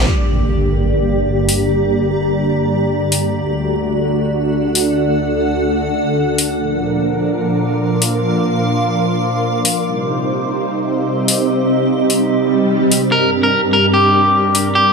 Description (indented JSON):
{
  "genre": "heavy wobble dubstep",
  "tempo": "147 BPM",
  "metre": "4/4",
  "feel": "swing 54% on 16ths, half-time",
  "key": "G minor",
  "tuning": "A4 = 440 Hz",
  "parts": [
    { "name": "supersaw pad", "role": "sustained chords", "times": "0.0-14.9 s", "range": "D2 to C5", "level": "-18 LUFS", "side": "right 1 dB", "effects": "phaser, low-pass filter" },
    { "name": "granular cloud pad", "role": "texture", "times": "0.0-14.9 s", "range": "C4 to D6", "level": "-18 LUFS", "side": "equal", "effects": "built-in reverb" },
    { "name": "impact and swell", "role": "sound effects", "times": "0.1-1.7, 12.4-13.1 s", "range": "none", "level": "-20 LUFS", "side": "equal", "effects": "none" },
    { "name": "electronic hi-hat", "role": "drums", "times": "1.5-14.6 s", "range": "none", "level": "-17 LUFS", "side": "left 3 dB", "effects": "overdrive" },
    { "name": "electric guitar at the edge of break-up", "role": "melody", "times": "13.1-14.9 s", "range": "G4 to Bb4", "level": "-14 LUFS", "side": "equal", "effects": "ping-pong delay" }
  ],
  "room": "moderate plate reverb, RT60 2.0 s",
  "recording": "none",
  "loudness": "-13 LUFS",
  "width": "side -4 dB against mid",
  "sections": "0.1-14.9 A section",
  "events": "impact 0.1-1.7; filter sweep on supersaw synth 0.1-14.9; swell 12.4-13.1",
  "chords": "0.1 Gm; 3.3 D; 6.6 Bb; 9.9 Cm; 13.1 Gm"
}